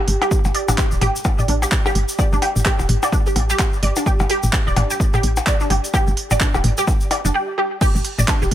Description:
minimal techno; 128 BPM; 4/4; swing 59% on 16ths; A4 = 440 Hz
pulsing gated texture; texture; 0.0-7.3 s; G4; -32 LUFS; equal; chorus, built-in reverb, sidechain pumping
woody FM bass; bass; 0.1-8.5 s; D1 to A1; -20 LUFS; equal; sidechain pumping
garage drum kit; drums; 0.1-8.5 s; crash cymbal, handclaps, hi-hat; -24 LUFS; right 2 dB
resonant blip pluck; riff; 0.2-8.4 s; D4 to D5; -22 LUFS; right 1 dB; ensemble chorus, sidechain pumping, dub echo
electronic percussion blips and toms; percussion; 0.2-8.5 s; -24 LUFS; left 2 dB; tape echo
electronic kick drum; drums; 0.3-8.4 s; -19 LUFS; equal
tube shaker; percussion; 0.3-8.5 s; -29 LUFS; left 2 dB
little or no reverb; -16 LUFS; side -12 dB against mid
0.0-7.8 A section
break 7.3-7.8
0.0 G5

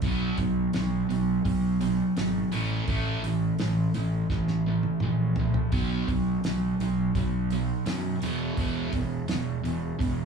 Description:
classic rock; 84 BPM; 4/4; straight; A4 = 440 Hz
sludgy distorted guitar; riff; 0.0-10.2 s; E2 to B3; -27 LUFS; right 1 dB; overdrive
fuzz fingered electric bass; bass; 0.0-10.2 s; E1 to F#2; -30 LUFS; right 3 dB; overdrive
damped 70s drum kit; drums; 0.0-10.2 s; hi-hat, kick drum, snare drum, toms; -32 LUFS; right 1 dB
moderate studio reverb, RT60 0.5 s; band playing live in one room, small room reverb; -24 LUFS; side -5 dB against mid
0.0-10.2 A section
drum fill 4.3-5.7
0.0 B5; 2.5 A5; 5.7 B5; 8.2 E5

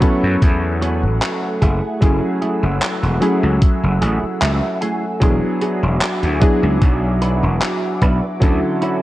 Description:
vaporwave; 75 BPM; 4/4; swing 54% on 16ths; A4 = 440 Hz
warm electric grand piano; accompaniment; 0.0-9.0 s; D3 to A4; -20 LUFS; equal; wide subtle chorus, tape echo
lush unison pad; sustained chords; 0.0-9.0 s; A3 to E6; -27 LUFS; equal; chorus, phaser
clean electric guitar; riff; 0.0-9.0 s; A3 to G#5; -26 LUFS; right 2 dB; ensemble chorus, tape echo
electronic kick drum; drums; 0.0-8.6 s; -14 LUFS; equal
gated 80s digital drum machine; drums; 0.0-9.0 s; handclaps, hi-hat; -24 LUFS; equal; gated reverb
gritty slap bass; bass; 0.2-8.6 s; E1 to F#2; -18 LUFS; equal; overdrive
light reverb, digital ambience; cassette tape; -15 LUFS; side -16 dB against mid
0.0-9.0 A section
clean electric guitar fill 4.0-5.2
0.0 A69; 1.6 F#m9; 5.2 E9; 8.4 Dmaj9

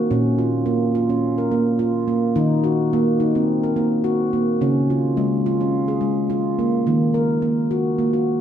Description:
world meditative, meditative tuned percussion; 106 BPM; 4/4; straight; Eb dorian; A4 = 440 Hz
handpan; solo; 0.0-8.4 s; Bb2 to Bb4; -17 LUFS; equal
wet recital hall reverb, RT60 1.6 s, studio reverb; -17 LUFS; side -9 dB against mid
0.0-6.9 A section; 6.9-8.4 B section
0.1 Bbm; 2.4 Ebm; 4.6 Db; 6.9 Ebm

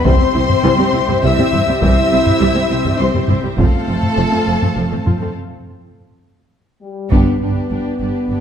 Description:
cinematic, epic orchestral film score; 102 BPM; 3/4; straight; A4 = 440 Hz
rich symphonic violin section; melody; 0.0-8.4 s; B4 to E6; -24 LUFS; left 3 dB
warm symphonic violin section; second line; 0.0-8.4 s; G4 to E5; -21 LUFS; left 4 dB
warm symphonic viola section; accompaniment; 0.0-8.4 s; E3 to F4; -23 LUFS; right 1 dB
clear symphonic string section; sustained chords; 0.0-5.4 s; C4 to F5; -23 LUFS; equal
mellow French horn section; sustained chords; 0.0-8.4 s; G3 to E4; -20 LUFS; left 2 dB
rich symphonic cello section; bass; 0.1-8.4 s; C2 to G2; -22 LUFS; right 3 dB
rich symphonic double bass section; bass; 0.1-8.4 s; F1 to C2; -22 LUFS; right 3 dB
taiko ensemble; drums; 0.1-7.7 s; -18 LUFS; equal
moderate scoring stage reverb, RT60 1.6 s; dark, warm production; -13 LUFS; side -8 dB against mid
0.0-7.1 A section; 7.1-8.4 B section
break 5.3-7.1; drum fill 6.7-7.1; band accent 7.1-7.7
0.1 C; 3.6 F; 5.3 N.C.; 7.1 G

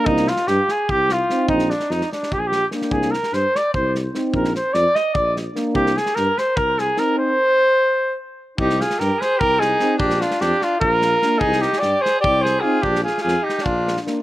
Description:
balkan folk, Balkan brass band; 296 BPM (eighths); 7/8; straight; C minor; A4 = 440 Hz
clear flugelhorn; melody; 0.0-14.0 s; D4 to Eb5; -18 LUFS; equal; slapback echo
clear euphonium; accompaniment; 0.0-7.4, 9.8-14.2 s; Bb3 to C4; -26 LUFS; right 4 dB
mellow euphonium; accompaniment; 0.0-7.4, 9.8-14.2 s; D4 to Eb4; -26 LUFS; left 4 dB
mellow tuba; bass; 0.1-14.0 s; Bb1 to G2; -24 LUFS; left 1 dB
loose indie drum kit; percussion; 0.1-14.1 s; kick drum, snare drum; -28 LUFS; equal
bright alto saxophone; second line; 8.6-14.0 s; D4 to Ab4; -25 LUFS; equal; slapback echo
little or no reverb; recorded outdoors, with no room sound; -17 LUFS; side -16 dB against mid
0.0-8.6 A section; 8.6-14.2 A section
0.1 Cm; 1.5 Bb; 2.9 Cm; 4.3 Bb; 5.8 Cm; 10.0 Bb; 11.4 Cm; 12.8 Bb

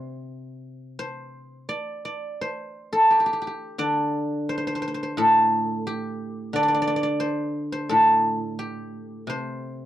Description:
chinese traditional, Chinese solo plucked strings; 87 BPM; 4/4; rubato; A4 = 441 Hz
guzheng; solo; 0.0-9.9 s; A2 to D5; -22 LUFS; equal
light reverb; dry, close 1970s-style studio recording; -21 LUFS; side -12 dB against mid
0.0-9.9 A section

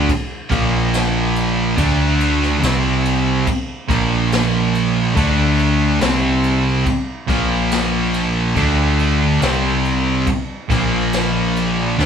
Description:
stoner and doom metal; 71 BPM; 4/4; straight; A4 = 439 Hz
heavy high-gain guitar; riff; 0.0-12.1 s; Bb2 to D4; -22 LUFS; left 1 dB; distortion
thick fuzz guitar; riff; 0.0-12.1 s; Bb2 to D4; -21 LUFS; left 7 dB; distortion
thick fuzz guitar; riff; 0.0-12.1 s; Bb2 to D4; -19 LUFS; right 6 dB; distortion
hollow-body short-scale fingered electric bass; bass; 0.0-12.1 s; Bb1 to D2; -22 LUFS; left 1 dB; tube saturation
jazz brush drum kit; drums; 0.1-12.1 s; crash cymbal, kick drum, ride cymbal, snare drum; -24 LUFS; equal
moderate large studio reverb, RT60 1.3 s; band playing live in one room; -15 LUFS; side -7 dB against mid
0.0-12.1 A section
0.0 D5; 0.5 Bb5; 1.8 D5; 2.6 C5; 3.9 Bb5; 5.2 D5; 6.0 C5; 7.3 Bb5; 8.6 D5; 9.4 C5; 10.7 Bb5

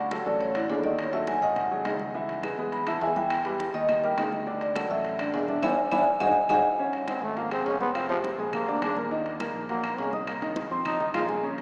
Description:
Afro-Cuban jazz; 207 BPM; 4/4; straight; Db major from 6.8 s; A4 = 440 Hz
vibraphone with soft mallets; melody; 0.0-6.6 s; E4 to B5; -30 LUFS; equal
warm concert grand piano; accompaniment; 0.0-11.6 s; C3 to Eb6; -33 LUFS; equal
fingered electric bass; bass; 0.0-11.6 s; E1 to F2; -42 LUFS; equal
congas; percussion; 0.1-11.6 s; -46 LUFS; equal
timbales; percussion; 0.1-11.6 s; -37 LUFS; equal
claves; percussion; 2.4-11.3 s; -45 LUFS; equal
growling trombone; second line; 7.1-11.2 s; F3 to F4; -33 LUFS; equal
wet cathedral reverb, RT60 4.6 s; recorded in a church or concert hall, small speaker sound; -27 LUFS; mono
0.0-6.8 A section; 6.8-11.6 A section
vibraphone solo 0.0-6.8; band accent 5.6-6.8; drum fill 5.9-6.8; trombone solo 6.8-11.6
0.0 D; 1.0 D#dim; 1.6 G#5; 2.1 C#m7; 3.3 Em; 3.9 D#; 4.5 Dadd9; 5.6 E7; 6.2 G#5; 6.8 Db; 8.0 Fm; 8.5 Bb7; 9.1 Ebm; 10.3 Cm7; 10.9 F5

